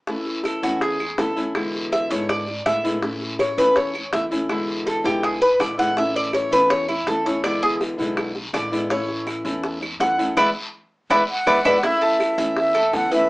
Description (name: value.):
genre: latin, Cuban son and guajira.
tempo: 164 BPM.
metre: 4/4.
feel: straight.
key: A major.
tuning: A4 = 442 Hz.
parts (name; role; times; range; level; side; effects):
flamenco guitar; accompaniment; 0.1-13.3 s; B2 to E4; -25 LUFS; left 1 dB; none.
bongos; percussion; 0.1-13.3 s; none; -28 LUFS; equal; none.
guiro; percussion; 0.1-13.3 s; none; -34 LUFS; left 1 dB; none.
Cuban tres; arpeggios; 0.5-13.3 s; E4 to F#5; -20 LUFS; equal; none.
claves; percussion; 0.5-12.9 s; none; -32 LUFS; right 3 dB; none.
upright bass; bass; 0.6-13.3 s; A1 to A2; -38 LUFS; equal; none.
breathy concert flute; melody; 11.3-13.3 s; E5 to F#5; -20 LUFS; right 1 dB; none.
room: wet small room reverb, RT60 0.5 s.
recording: band playing live in one room, small speaker sound.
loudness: -19 LUFS.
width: side -21 dB against mid.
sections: 0.1-11.8 A section; 11.8-13.3 B section.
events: Cuban tres solo 0.1-11.8; band accent 10.4-11.8; drum fill 11.1-11.8.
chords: 0.1 A; 1.6 E7; 3.0 A; 4.5 E7; 6.0 A; 7.4 E7; 8.9 A; 10.4 E7; 11.8 A.